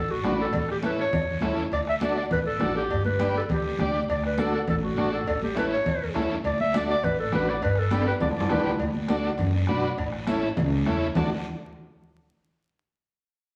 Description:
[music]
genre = latin, cumbia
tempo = 203 BPM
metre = 4/4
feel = straight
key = D major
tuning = A4 = 440 Hz
[part]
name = warm clarinet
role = melody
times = 0.0-8.7 s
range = F#4 to E5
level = -30 LUFS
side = equal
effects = none
[part]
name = upright bass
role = bass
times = 0.0-11.3 s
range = G1 to F#2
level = -32 LUFS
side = equal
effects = none
[part]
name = congas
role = percussion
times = 0.1-11.2 s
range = none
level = -33 LUFS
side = equal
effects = none
[part]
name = overdriven combo organ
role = accompaniment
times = 0.2-11.3 s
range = C#4 to D5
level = -32 LUFS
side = equal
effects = none
[part]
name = bombo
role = percussion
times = 0.2-11.2 s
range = none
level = -40 LUFS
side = equal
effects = none
[part]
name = guiro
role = percussion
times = 0.2-11.2 s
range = none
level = -46 LUFS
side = equal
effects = none
[part]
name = timbales and cowbell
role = percussion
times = 0.2-11.2 s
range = none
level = -36 LUFS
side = equal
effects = none
[sound]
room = wet large studio reverb, RT60 1.3 s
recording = vinyl crackle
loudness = -26 LUFS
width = mono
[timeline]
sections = 0.0-8.8 A section; 8.8-11.2 B section; 11.2-12.3 C section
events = drum fill 7.9-8.8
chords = 0.0 D; 0.5 A; 1.7 D; 2.9 G; 4.1 D; 5.3 A; 6.4 D; 7.6 G; 8.8 D; 10.0 A; 11.2 D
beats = 0.25 | 0.55 0.84 1.14 1.43 | 1.73 2.02 2.32 2.61 | 2.91 3.20 3.50 3.79 | 4.09 4.38 4.68 4.97 | 5.27 5.56 5.86 6.15 | 6.45 6.74 7.04 7.33 | 7.63 7.92 8.22 8.51 | 8.80 9.10 9.40 9.69 | 9.99 10.28 10.58 10.87 | 11.17

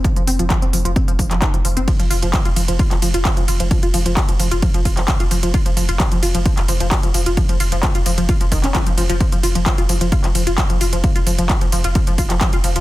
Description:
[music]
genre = driving peak-time techno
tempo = 131 BPM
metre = 4/4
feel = straight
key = unclear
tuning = A4 = 439 Hz
[part]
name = tight sequenced synth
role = riff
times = 0.0-12.8 s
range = Eb3 to F4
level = -22 LUFS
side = equal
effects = chorus, cassette tape, sidechain pumping, tape echo
[part]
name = saturated sub bass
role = bass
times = 0.0-12.8 s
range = F1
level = -20 LUFS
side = equal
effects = overdrive, sidechain pumping, low-pass filter
[part]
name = electronic kick drum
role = drums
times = 0.0-12.5 s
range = none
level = -18 LUFS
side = equal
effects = overdrive, studio reverb
[part]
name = techno drum kit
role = drums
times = 0.0-12.8 s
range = handclaps, hi-hat, ride cymbal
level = -23 LUFS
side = right 1 dB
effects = overdrive, sidechain pumping on hats, studio reverb, sidechain pumping on cymbals
[sound]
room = digital ambience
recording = dense, heavily limited modern master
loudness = -15 LUFS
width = side -16 dB against mid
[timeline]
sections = 0.0-12.8 A section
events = none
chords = 0.0 F5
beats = | 0.04 0.50 0.96 1.42 | 1.88 2.33 2.79 3.25 | 3.71 4.17 4.62 5.08 | 5.54 6.00 6.46 6.92 | 7.37 7.83 8.29 8.75 | 9.21 9.66 10.12 10.58 | 11.04 11.49 11.95 12.41

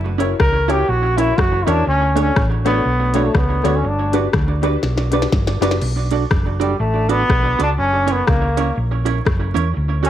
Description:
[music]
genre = ska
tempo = 122 BPM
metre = 4/4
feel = swing 59% on 8ths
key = B minor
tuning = A4 = 439 Hz
[part]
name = hollow-body short-scale fingered electric bass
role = bass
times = 0.0-10.1 s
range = F#1 to E2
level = -20 LUFS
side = equal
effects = none
[part]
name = vintage hollow-body jazz guitar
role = accompaniment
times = 0.2-10.1 s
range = A3 to D5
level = -23 LUFS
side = right 9 dB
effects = tape echo
[part]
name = dark upright piano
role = stabs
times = 0.2-5.8 s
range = D4 to C#5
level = -23 LUFS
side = left 8 dB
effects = none
[part]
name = minimal click drum kit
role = drums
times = 0.2-10.1 s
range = crash cymbal, hi-hat, kick drum, rim click, snare drum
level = -19 LUFS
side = left 2 dB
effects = overdrive
[part]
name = brilliant trombone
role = melody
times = 0.4-10.1 s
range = G3 to A#4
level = -19 LUFS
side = equal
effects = none
[sound]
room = light reverb, digital ambience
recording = 1960s-style stereo with parts hard left and right, vinyl crackle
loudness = -15 LUFS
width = side -11 dB against mid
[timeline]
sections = 0.0-5.8 A section; 5.8-10.1 A section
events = trombone solo 0.0-5.8, 5.8-10.1; drum fill 4.8-5.8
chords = 0.0 F#7; 1.9 Dmaj7; 3.8 Gmaj7; 5.8 Bm7; 7.8 F#7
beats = 0.40 0.89 1.38 | 1.88 2.37 2.86 3.35 | 3.85 4.34 4.83 5.33 | 5.82 6.31 6.80 7.29 | 7.79 8.28 8.77 9.27 | 9.76

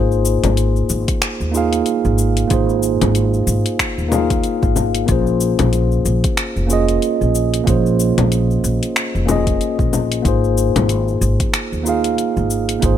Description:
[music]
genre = sunset chillout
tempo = 93 BPM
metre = 4/4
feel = swing 58% on 16ths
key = unclear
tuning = A4 = 440 Hz
[part]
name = mellow tine electric piano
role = accompaniment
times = 0.0-13.0 s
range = Bb3 to F5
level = -18 LUFS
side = moving between left 9 dB and right 8 dB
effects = auto-pan, tape echo
[part]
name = upright bass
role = bass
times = 0.0-13.0 s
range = F1 to Eb2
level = -18 LUFS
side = equal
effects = none
[part]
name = deep house drum kit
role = drums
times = 0.1-13.0 s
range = cabasa, congas, finger snaps, hi-hat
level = -21 LUFS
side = left 4 dB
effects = overdrive
[part]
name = electronic kick drum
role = drums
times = 1.1-13.0 s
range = none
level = -20 LUFS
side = equal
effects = overdrive
[sound]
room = light reverb, digital ambience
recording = none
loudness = -14 LUFS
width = side -10 dB against mid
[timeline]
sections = 0.0-13.0 A section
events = none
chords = 0.0 Ab6; 5.1 Bbm7; 10.2 Ab6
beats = 0.57 1.22 1.86 | 2.51 3.15 3.80 4.44 | 5.09 5.73 6.38 7.02 | 7.67 8.31 8.96 9.60 | 10.25 10.89 11.54 12.19 | 12.83

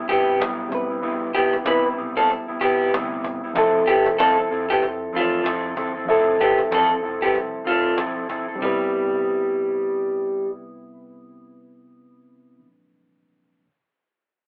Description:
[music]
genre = indie pop, bedroom pop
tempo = 95 BPM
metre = 4/4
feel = swing 60% on 16ths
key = C major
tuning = A4 = 440 Hz
[part]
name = mellow electric guitar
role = accompaniment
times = 0.0-12.7 s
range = C3 to A4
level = -30 LUFS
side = equal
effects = vibrato effect
[part]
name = reed electric piano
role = accompaniment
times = 0.0-13.7 s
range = F3 to E5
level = -27 LUFS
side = equal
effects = none
[part]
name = vintage muted fingered electric bass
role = bass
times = 0.0-12.6 s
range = E1 to G2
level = -51 LUFS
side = equal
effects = none
[part]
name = electric guitar through a small old amp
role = second line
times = 0.1-10.5 s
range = G3 to B4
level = -22 LUFS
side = equal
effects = none
[part]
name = cajon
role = drums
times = 0.1-8.5 s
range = none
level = -33 LUFS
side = equal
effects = none
[sound]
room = moderate studio reverb, RT60 0.6 s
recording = rough rehearsal-room recording, telephone sound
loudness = -21 LUFS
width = mono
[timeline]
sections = 0.0-3.6 A section; 3.6-8.6 B section; 8.6-11.1 C section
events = none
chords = 0.0 Cmaj7; 3.6 Fmaj7; 8.6 Cmaj7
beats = 0.40 | 1.03 1.66 2.29 2.92 | 3.55 4.18 4.82 5.45 | 6.08 6.71 7.34 7.97 | 8.60 9.24 9.87 10.50

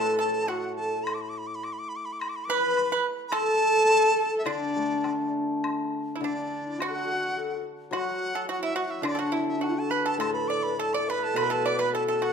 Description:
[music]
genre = chinese traditional, Chinese chamber ensemble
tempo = 106 BPM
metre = 2/4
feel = rubato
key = D gong mode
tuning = A4 = 437 Hz
[part]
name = bright dizi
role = melody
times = 0.0-12.3 s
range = D5 to D6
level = -29 LUFS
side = right 1 dB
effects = none
[part]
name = dark horsehead fiddle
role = second line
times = 0.0-12.3 s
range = D4 to B4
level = -32 LUFS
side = right 6 dB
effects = none
[part]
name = mellow xiao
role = second line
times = 0.0-12.3 s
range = D4 to B4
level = -31 LUFS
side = left 9 dB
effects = none
[part]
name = pipa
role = second line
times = 0.0-12.3 s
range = D4 to D5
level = -31 LUFS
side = right 6 dB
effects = none
[part]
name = hammered dulcimer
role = accompaniment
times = 0.0-1.6, 4.5-12.3 s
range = A2 to D4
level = -32 LUFS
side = left 3 dB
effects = none
[part]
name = woodblock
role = percussion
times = 0.5-11.5 s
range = none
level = -37 LUFS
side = left 3 dB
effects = none
[sound]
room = moderate recital hall reverb, RT60 1.5 s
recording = none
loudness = -24 LUFS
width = side -6 dB against mid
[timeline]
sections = 0.0-5.6 A section; 5.6-12.3 B section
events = none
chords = none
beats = 0.49 | 1.07 1.65 | 2.21 2.77 | 3.33 3.90 | 4.47 5.05 | 5.64 6.22 | 6.80 7.37 | 7.92 8.48 | 9.04 9.62 | 10.20 10.79 | 11.36 11.93

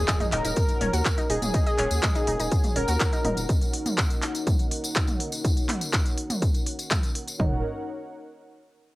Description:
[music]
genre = melodic techno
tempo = 123 BPM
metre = 4/4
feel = straight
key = Eb minor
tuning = A4 = 440 Hz
[part]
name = soft supersaw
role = melody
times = 0.0-3.4 s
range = Ab4 to Bb4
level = -29 LUFS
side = equal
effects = sidechain pumping, cassette tape, tape echo
[part]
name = dark analog pad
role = sustained chords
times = 0.0-7.6 s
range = Eb4 to Gb5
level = -34 LUFS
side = equal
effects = chorus, sidechain pumping, cassette tape
[part]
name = round analog bass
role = bass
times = 0.0-3.5, 7.4-7.6 s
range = Eb1 to Eb2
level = -28 LUFS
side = equal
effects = sidechain pumping
[part]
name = impact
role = sound effects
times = 0.0-1.5 s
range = none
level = -39 LUFS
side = equal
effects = none
[part]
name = analog pluck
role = arpeggios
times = 0.1-3.3, 7.4-7.6 s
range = Db4 to Eb5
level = -32 LUFS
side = equal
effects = chorus, sidechain pumping, cassette tape, tape echo
[part]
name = techno drum kit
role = drums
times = 0.1-7.5 s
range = kick drum, toms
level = -24 LUFS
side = equal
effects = none
[part]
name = techno drum kit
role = drums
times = 0.1-7.4 s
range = handclaps, hi-hat, toms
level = -29 LUFS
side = equal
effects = none
[part]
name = tambourine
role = percussion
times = 0.1-7.4 s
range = none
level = -35 LUFS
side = left 2 dB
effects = none
[sound]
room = light reverb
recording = home recording on cassette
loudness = -22 LUFS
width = side -19 dB against mid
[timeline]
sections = 0.0-7.4 A section; 7.4-9.0 B section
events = impact 0.0-1.5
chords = 0.0 Ebm7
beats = 0.08 0.57 1.05 | 1.54 2.03 2.52 3.01 | 3.49 3.98 4.47 4.96 | 5.45 5.93 6.42 6.91 | 7.40

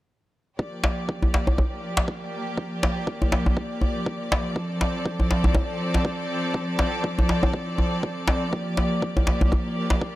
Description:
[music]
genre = afro house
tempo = 121 BPM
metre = 4/4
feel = swing 57% on 16ths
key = G minor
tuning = A4 = 440 Hz
[part]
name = clear studio string section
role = sustained chords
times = 0.6-10.2 s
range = F3 to D5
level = -27 LUFS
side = equal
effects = sidechain pumping
[part]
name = electronic kick drum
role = drums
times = 0.6-10.1 s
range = none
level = -28 LUFS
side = equal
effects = overdrive, high-pass filter on kick
[part]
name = djembe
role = percussion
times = 0.8-10.0 s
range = none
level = -22 LUFS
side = equal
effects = none
[sound]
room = small room ambience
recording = dark, warm production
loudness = -22 LUFS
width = side -16 dB against mid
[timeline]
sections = 0.6-10.2 A section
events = none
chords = 0.6 Gm7; 4.6 F6; 8.5 Gm7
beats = | 0.59 1.09 1.58 2.08 | 2.58 3.07 3.57 4.06 | 4.56 5.06 5.55 6.05 | 6.54 7.04 7.54 8.03 | 8.53 9.02 9.52 10.02

